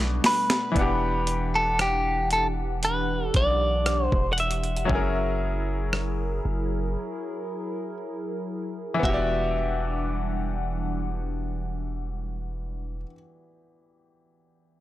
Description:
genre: contemporary R&B.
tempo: 58 BPM.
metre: 4/4.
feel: straight.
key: E minor.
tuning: A4 = 439 Hz.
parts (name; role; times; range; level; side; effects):
direct-recorded clean electric guitar; melody; 0.0-13.1 s; G4 to F#5; -26 LUFS; equal; phaser, analog delay.
bright grand piano; accompaniment; 0.0-14.8 s; B2 to F#5; -31 LUFS; left 2 dB; none.
hollow soft pad; sustained chords; 0.0-13.1 s; E3 to F#5; -33 LUFS; equal; chorus.
long sustained 808-style bass; bass; 0.0-13.1 s; E1 to B1; -29 LUFS; equal; tube saturation.
dusty soul sampler-style drum kit; drums; 0.2-9.3 s; hi-hat, kick drum, rim click, snare drum; -25 LUFS; equal; none.
room: little or no reverb.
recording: dry, gritty hardware recording, transformer saturation.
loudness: -24 LUFS.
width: side -15 dB against mid.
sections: 0.8-9.0 A section; 9.0-13.2 B section.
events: drum fill 0.0-0.8; break 7.0-9.0.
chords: 0.0 Bm7; 0.8 Em9; 4.9 F#9; 9.0 Em9.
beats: | 0.76 1.79 2.83 3.86 | 4.89 5.93 6.96 8.00 | 9.03 10.07 11.10 12.14.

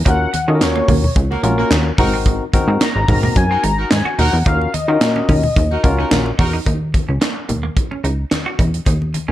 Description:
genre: early-eighties boogie funk.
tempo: 109 BPM.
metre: 4/4.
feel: straight.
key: Eb dorian.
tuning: A4 = 440 Hz.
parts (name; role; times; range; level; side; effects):
plucky analog bass; bass; 0.0-9.3 s; Ab1 to Eb3; -18 LUFS; equal; none.
warm velvety synth lead; melody; 0.1-6.4 s; Db5 to Bb5; -21 LUFS; left 3 dB; chorus.
barky tine electric piano; accompaniment; 0.1-6.3 s; C4 to Bb4; -21 LUFS; left 3 dB; none.
clean electric guitar; riff; 0.1-9.3 s; Ab3 to Gb4; -27 LUFS; right 6 dB; lush chorus.
tight funk drum kit; drums; 0.1-9.3 s; handclaps, hi-hat, kick drum, snare drum; -18 LUFS; equal; none.
congas; percussion; 0.3-9.3 s; none; -24 LUFS; left 1 dB; none.
warm horn section; second line; 1.3-6.6 s; Bb3 to Bb4; -24 LUFS; right 1 dB; none.
room: small room ambience.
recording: dark, warm production.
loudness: -14 LUFS.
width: side -14 dB against mid.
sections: 0.0-6.7 A section; 6.7-9.3 B section.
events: none.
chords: 0.0 Ebm9; 2.0 Ab9; 4.5 Ebm7; 6.7 Eb7(no3).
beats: | 0.06 0.61 1.16 1.71 | 2.26 2.81 3.36 3.91 | 4.46 5.01 5.56 6.11 | 6.66 7.21 7.76 8.31 | 8.87.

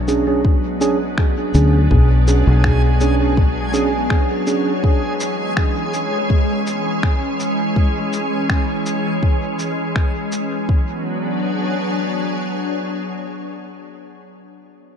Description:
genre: ambient dub.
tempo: 82 BPM.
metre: 4/4.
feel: swing 54% on 16ths.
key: B dorian.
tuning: A4 = 440 Hz.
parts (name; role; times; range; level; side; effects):
soft additive organ-like pad; sustained chords; 0.0-14.2 s; E3 to C#5; -22 LUFS; left 1 dB; ensemble chorus, built-in reverb.
fingered electric bass; bass; 0.0-4.1 s; B1 to D2; -15 LUFS; equal; none.
backwards swelling texture; texture; 0.6-10.7 s; G#3 to G#4; -28 LUFS; right 2 dB; built-in reverb.
mellow tine electric piano; stabs; 0.1-4.7 s; C#4 to G#4; -21 LUFS; right 4 dB; dub echo.
electronic cabasa and finger snaps; drums; 0.1-10.5 s; none; -26 LUFS; equal; small room ambience, dub echo.
electronic kick drum; drums; 0.4-10.8 s; none; -16 LUFS; equal; small room ambience.
room: light reverb.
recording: dark, warm production.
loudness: -16 LUFS.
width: side -8 dB against mid.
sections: 0.0-10.7 A section; 10.7-13.6 B section.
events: none.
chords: 0.0 Bm69; 4.8 E6; 10.7 Bm69.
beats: 0.45 1.18 | 1.91 2.64 3.37 4.10 | 4.83 5.57 6.30 7.03 | 7.76 8.49 9.22 9.96 | 10.69 11.42 12.15 12.88.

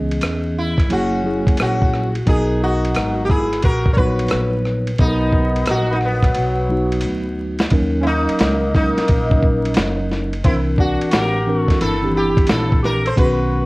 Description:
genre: hip hop, jazz-hop.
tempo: 88 BPM.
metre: 4/4.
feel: swing 66% on 16ths.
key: B major.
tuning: A4 = 442 Hz.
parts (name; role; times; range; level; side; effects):
mellow tine electric piano; accompaniment; 0.0-13.7 s; D#3 to C#5; -22 LUFS; equal; medium stereo tremolo, plate reverb.
upright bass; bass; 0.0-13.7 s; F#1 to E2; -22 LUFS; equal; none.
lo-fi sampler-style drum kit; drums; 0.1-13.4 s; hi-hat, kick drum, ride cymbal, rim click, snare drum; -19 LUFS; equal; none.
sitar; melody; 0.6-13.7 s; B3 to C#5; -22 LUFS; equal; slapback echo, plate reverb.
breathy tenor saxophone; second line; 0.9-13.7 s; F#3 to A#4; -24 LUFS; left 1 dB; plate reverb.
room: light reverb.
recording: worn, warbling old tape, cassette tape, vinyl crackle, warbly pitch drift.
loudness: -15 LUFS.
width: side -22 dB against mid.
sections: 0.0-7.7 A section; 7.7-13.7 B section.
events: drum fill 6.4-7.7.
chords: 0.0 C#m7; 0.9 F#9; 2.3 Bmaj7; 7.7 D#m7; 10.4 C9.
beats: 0.22 0.90 1.58 | 2.27 2.95 3.63 4.31 | 4.99 5.67 6.36 7.04 | 7.72 8.40 9.08 9.77 | 10.45 11.13 11.81 12.49 | 13.17.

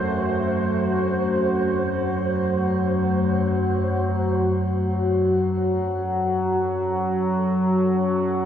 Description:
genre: dark ambient drone.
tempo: free time.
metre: none.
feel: none.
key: unclear.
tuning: A4 = 443 Hz.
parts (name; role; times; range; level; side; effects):
deep dark ambient pad; sustained chords; 0.0-8.5 s; F#2 to F#5; -25 LUFS; equal; chorus, built-in reverb, shimmer reverb.
gamelan-type bossed gongs; arpeggios; 0.0-3.4 s; E2; -39 LUFS; equal; none.
analog drone; drone; 0.0-8.5 s; F#2 to F#3; -22 LUFS; left 1 dB; chorus.
wind-like tuned noise texture; texture; 0.0-8.5 s; A4 to C5; -33 LUFS; right 3 dB; built-in reverb, shimmer reverb.
room: wet cathedral reverb, RT60 6.8 s.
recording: in a vast, echoing space.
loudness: -20 LUFS.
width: side -9 dB against mid.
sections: 0.0-4.5 A section; 4.5-8.5 B section.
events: none.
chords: 0.0 Am/F#; 4.5 F#m.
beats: free time.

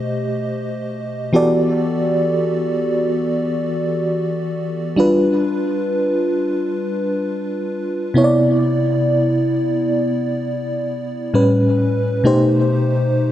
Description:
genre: R&B.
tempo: free time.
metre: none.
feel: none.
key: E minor.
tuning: A4 = 439 Hz.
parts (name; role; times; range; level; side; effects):
FM electric piano with soft pad layer; solo; 0.0-13.3 s; A2 to D#5; -16 LUFS; equal; chorus, tremolo, tape echo.
room: light reverb, digital ambience.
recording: echo-heavy mix, nothing above 10.5 kHz.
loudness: -16 LUFS.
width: side -12 dB against mid.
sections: 0.0-1.3 A section; 1.3-13.3 A section.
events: none.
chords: 0.0 B7b9b13; 1.3 Em11; 5.0 G7; 8.2 Cmaj9; 11.3 A9; 12.2 B7b9b13.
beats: free time.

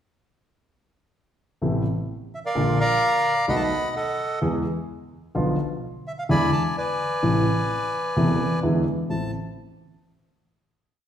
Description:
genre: tango.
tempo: 128 BPM.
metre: 4/4.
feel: rubato.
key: A harmonic minor.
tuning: A4 = 442 Hz.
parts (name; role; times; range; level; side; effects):
dark grand piano; accompaniment; 1.6-9.3 s; E1 to G#4; -23 LUFS; equal; none.
bandoneon; melody; 2.3-9.3 s; A4 to B5; -24 LUFS; equal; none.
room: wet large studio reverb, RT60 1.4 s.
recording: heard from further back in the room.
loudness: -21 LUFS.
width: side -9 dB against mid.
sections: 1.6-9.1 A section; 9.1-11.0 final chord.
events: none.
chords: 1.6 Amadd9; 2.6 Bb; 3.5 B7; 4.4 E; 5.4 Bdim; 6.3 E7; 7.2 Am; 8.6 E7; 9.1 Am.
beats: | 1.62 2.09 2.56 3.02 | 3.49 3.96 4.42 4.89 | 5.36 5.82 6.29 6.75 | 7.22 7.69 8.16 8.62 | 9.09.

